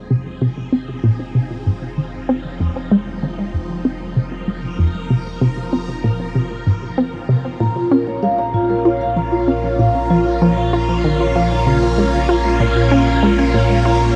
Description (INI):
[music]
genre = ambient, sequencer-driven space music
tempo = 96 BPM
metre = 4/4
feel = straight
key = F minor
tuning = A4 = 439 Hz
[part]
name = phased string machine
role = sustained chords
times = 0.0-14.2 s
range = Bb2 to Bb4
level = -25 LUFS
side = equal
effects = ensemble chorus, phaser, shimmer reverb
[part]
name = round analog bass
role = bass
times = 0.0-14.2 s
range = F1 to Bb1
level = -28 LUFS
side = equal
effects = none
[part]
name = resonant blip pluck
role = riff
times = 0.1-14.1 s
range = F2 to F4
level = -20 LUFS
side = equal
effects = chorus, tape echo
[part]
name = vibraphone with soft mallets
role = arpeggios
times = 7.6-14.2 s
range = F4 to Bb5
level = -21 LUFS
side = equal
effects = tape echo, shimmer reverb
[sound]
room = moderate huge ambient reverb, RT60 8.0 s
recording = dark, warm production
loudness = -18 LUFS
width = mono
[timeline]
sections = 0.0-14.2 A section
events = fade-in on string machine 0.0-14.2; fade-in on analog synth bass 0.0-14.2; filter sweep on synth arpeggio sound 0.0-14.2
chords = 0.0 Fm7; 7.6 Bbm